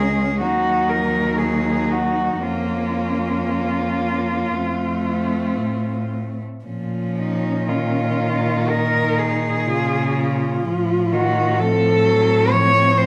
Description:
classical, lyrical piece for cello ensemble; 54-66 BPM; 4/4; rubato; Bb minor; A4 = 439 Hz
warm cello; melody; 0.0-13.1 s; Eb4 to Db5; -23 LUFS; equal
dark cello; second line; 0.0-13.1 s; C4 to F4; -29 LUFS; equal
rich cello; accompaniment; 0.0-13.1 s; Db3 to Bb3; -26 LUFS; equal
rich cello; bass; 0.0-13.1 s; Db2 to Bb2; -26 LUFS; equal
wet recital hall reverb, RT60 1.3 s; -20 LUFS; mono
0.0-13.1 A section
0.4 Ebmadd11; 2.4 Bbm/F; 4.5 F; 6.7 Bbm; 10.7 F7/A
0.42 1.39 | 2.42 3.50 4.55 5.57 | 6.65 7.69 8.69 9.68 | 10.65 11.60 12.51

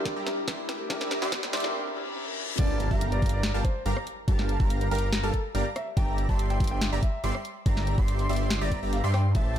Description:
future bass; 142 BPM; 4/4; half-time; A4 = 440 Hz
felt-muted upright piano; accompaniment; 0.0-2.6 s; D4 to Bb4; -35 LUFS; left 2 dB; sidechain pumping, ping-pong delay
Celtic harp; arpeggios; 0.0-5.1 s; E4 to Bb4; -38 LUFS; left 1 dB; sidechain pumping, ping-pong delay
supersaw stab; riff; 0.0-9.6 s; G3 to C6; -33 LUFS; right 1 dB; sidechain pumping
riser, reverse cymbal and impact; sound effects; 0.0-4.3 s; -37 LUFS; left 1 dB
electronic kick drum; drums; 0.1-9.4 s; -26 LUFS; equal
trap drum kit; drums; 0.1-9.6 s; crash cymbal, hi-hat, rim click, snare drum; -33 LUFS; left 1 dB; high-pass filter on snare, high-pass filter on hats, high-pass filter on cymbals
warm grand piano; melody; 2.6-9.5 s; A4 to A5; -36 LUFS; equal; sidechain pumping, dub echo
airy dreamy lead; arpeggios; 2.6-9.6 s; A5 to C6; -38 LUFS; equal; chorus, sidechain pumping, ping-pong delay
wide detuned saw bass; bass; 2.6-9.6 s; G1 to G2; -27 LUFS; equal; chorus, sidechain pumping
light reverb, digital ambience; dark, warm production, high-pass filter; -25 LUFS; side -10 dB against mid
0.0-2.6 A section; 2.6-9.6 B section
build-up 0.0-2.6; drum fill 0.0-1.7; riser 0.0-2.6; filter sweep on harp 0.0-2.6; filter sweep 0.0-2.6; break 1.7-2.6; reverse cymbal 1.7-2.6; drop 2.6-9.6; impact 2.6-4.3
0.0 C7/G; 2.6 Gm7; 6.0 C7/G
0.05 0.48 | 0.90 1.32 1.74 2.17 | 2.59 3.01 3.43 3.86 | 4.28 4.70 5.12 5.55 | 5.97 6.39 6.82 7.24 | 7.66 8.08 8.51 8.93 | 9.35

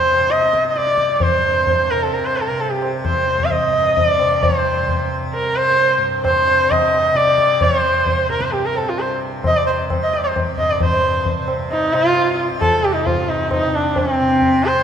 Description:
indian classical, Hindustani; 132 BPM; 7/4; straight; C raga bhimpalasi; A4 = 441 Hz
dark sarangi; melody; 0.0-14.8 s; C4 to F5; -16 LUFS; equal
tanpura; drone; 0.0-14.8 s; C2 to C3; -26 LUFS; right 1 dB
tabla; percussion; 0.3-14.6 s; -23 LUFS; left 1 dB
wet concert hall reverb, RT60 2.2 s; minimal, uncompressed stereo recording; -15 LUFS; side -8 dB against mid
0.0-10.8 A section; 10.8-14.8 B section
0.30 0.76 | 1.22 1.68 2.14 2.60 3.05 3.51 3.97 | 4.43 4.89 5.34 5.80 6.26 6.71 7.17 | 7.62 8.08 8.54 8.99 9.45 9.90 10.35 | 10.81 11.26 11.71 12.16 12.62 13.07 13.52 | 13.97 14.42

